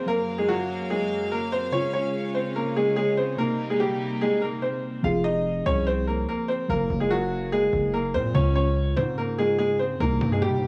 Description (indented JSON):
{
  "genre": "hip hop",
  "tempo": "145 BPM",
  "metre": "4/4",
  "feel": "half-time",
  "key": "F minor",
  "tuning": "A4 = 437 Hz",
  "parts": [
    { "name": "clear upright piano", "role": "melody", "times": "0.0-10.7 s", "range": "Gb3 to F5", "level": "-27 LUFS", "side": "equal", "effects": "none" },
    { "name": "muted felt-like synth keys", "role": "accompaniment", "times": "0.0-10.7 s", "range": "C3 to F5", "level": "-32 LUFS", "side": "equal", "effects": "chorus, phaser" },
    { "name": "warm studio string section", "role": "sustained chords", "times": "0.0-5.0 s", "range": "Gb2 to F5", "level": "-35 LUFS", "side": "equal", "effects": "none" },
    { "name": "distorted 808-style bass", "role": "bass", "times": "5.0-10.7 s", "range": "F1 to C3", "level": "-30 LUFS", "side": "equal", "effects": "distortion" }
  ],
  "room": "light reverb, small room ambience",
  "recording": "none",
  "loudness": "-25 LUFS",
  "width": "mono",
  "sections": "0.0-5.0 A section; 5.0-10.7 B section",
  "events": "none",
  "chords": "0.1 Gbmaj7; 1.7 Dbmaj7; 3.4 Cm7; 5.0 Fm; 6.7 Gbmaj7; 8.3 Dbmaj7; 10.0 Cm7"
}